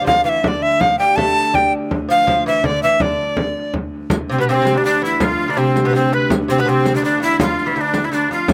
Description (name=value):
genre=medieval dance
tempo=164 BPM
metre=3/4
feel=straight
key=D dorian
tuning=A4 = 440 Hz
part: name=breathy bright tenor recorder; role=melody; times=0.0-8.5 s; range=C4 to A5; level=-19 LUFS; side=equal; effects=none
part: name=lute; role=second line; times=0.0-8.5 s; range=D2 to A3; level=-24 LUFS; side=equal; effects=slapback echo
part: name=clear viola da gamba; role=drone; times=0.0-8.5 s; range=D2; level=-28 LUFS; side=equal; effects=none
part: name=frame drum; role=percussion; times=0.1-8.5 s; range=none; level=-24 LUFS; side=equal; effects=none
part: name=riq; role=percussion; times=4.1-8.5 s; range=none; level=-28 LUFS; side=equal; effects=none
part: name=clear shawm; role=second line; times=4.3-8.5 s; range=C4 to B4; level=-26 LUFS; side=equal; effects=none
room=little or no reverb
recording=recorded outdoors, with no room sound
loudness=-17 LUFS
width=mono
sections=0.0-4.1 A section; 4.1-8.5 B section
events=none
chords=none